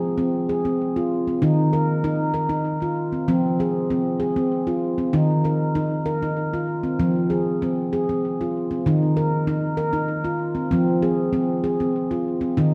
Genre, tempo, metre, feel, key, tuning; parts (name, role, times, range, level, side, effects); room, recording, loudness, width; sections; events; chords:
world meditative, meditative tuned percussion; 97 BPM; 3/4; straight; F minor pentatonic; A4 = 438 Hz
handpan; solo; 0.0-12.7 s; Eb3 to Bb4; -22 LUFS; equal; tape echo
wet echo chamber reverb, RT60 2.2 s; -22 LUFS; mono
0.0-12.7 A section
0.0 Fm; 1.4 Eb5; 3.3 Fm; 5.1 Eb5; 7.0 Fm; 8.9 Eb5; 10.7 Fm